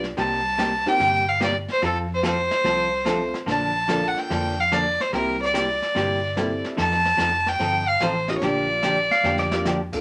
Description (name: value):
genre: country, western swing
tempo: 145 BPM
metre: 4/4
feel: swing 67% on 8ths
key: Bb major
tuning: A4 = 438 Hz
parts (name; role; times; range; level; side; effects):
- vintage muted fingered electric bass; bass; 0.0-9.9 s; F1 to F2; -34 LUFS; equal; none
- jazz brush drum kit; drums; 0.0-10.0 s; brushed snare drum, crash cymbal, hi-hat, kick drum, snare drum; -35 LUFS; equal; none
- clear fiddle; melody; 0.2-9.7 s; A4 to A5; -24 LUFS; equal; none
- vintage hollow-body jazz guitar; accompaniment; 0.2-9.8 s; C3 to A4; -29 LUFS; equal; none
- clear upright piano; accompaniment; 0.9-10.0 s; A3 to Bb4; -31 LUFS; equal; none
- clean lap steel guitar; second line; 9.1-9.8 s; D5 to F5; -24 LUFS; equal; none
room: moderate studio reverb, RT60 0.6 s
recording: none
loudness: -22 LUFS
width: mono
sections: 0.0-10.0 A section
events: drum fill 9.2-9.7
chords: 0.2 Cm7; 1.8 F; 3.5 Bbmaj7; 5.1 C7; 6.8 F7; 8.4 Bb6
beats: | 0.17 0.58 1.00 1.41 | 1.82 2.24 2.65 3.06 | 3.48 3.89 4.30 4.71 | 5.13 5.54 5.95 6.36 | 6.78 7.19 7.60 8.01 | 8.42 8.84 9.25 9.66